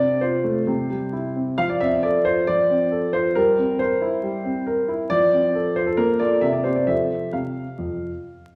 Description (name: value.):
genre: classical-period piano sonatina.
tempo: 135 BPM.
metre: 4/4.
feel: straight.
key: F major.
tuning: A4 = 440 Hz.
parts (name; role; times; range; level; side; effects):
warm grand piano; solo; 0.0-8.5 s; F2 to F5; -22 LUFS; equal; none.
room: wet recital hall reverb, RT60 1.5 s.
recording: heard from further back in the room, vinyl crackle.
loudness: -22 LUFS.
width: mono.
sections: 0.0-8.6 A section.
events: none.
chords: 0.0 F/C; 0.7 C; 1.6 F; 3.3 C7/G; 5.1 F; 6.0 Bbmaj7; 6.4 C5; 6.9 F.